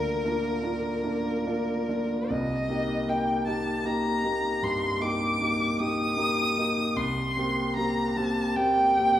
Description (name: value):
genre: classical, romantic duo for violin and grand piano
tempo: 51 BPM (dotted quarters)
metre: 12/8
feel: rubato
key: unclear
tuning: A4 = 440 Hz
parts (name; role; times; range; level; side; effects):
- rich violin; melody; 0.0-9.2 s; Bb4 to Eb6; -27 LUFS; equal; none
- clear grand piano; accompaniment; 0.0-9.2 s; C2 to G4; -27 LUFS; equal; none
room: wet recital hall reverb, RT60 1.6 s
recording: heard from further back in the room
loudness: -24 LUFS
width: side -12 dB against mid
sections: 0.0-9.2 A section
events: none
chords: 0.0 Bb/D; 2.3 Cm7; 7.0 C7(no3)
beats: 1.05 | 2.31 3.47 4.63 5.79 | 6.96 8.16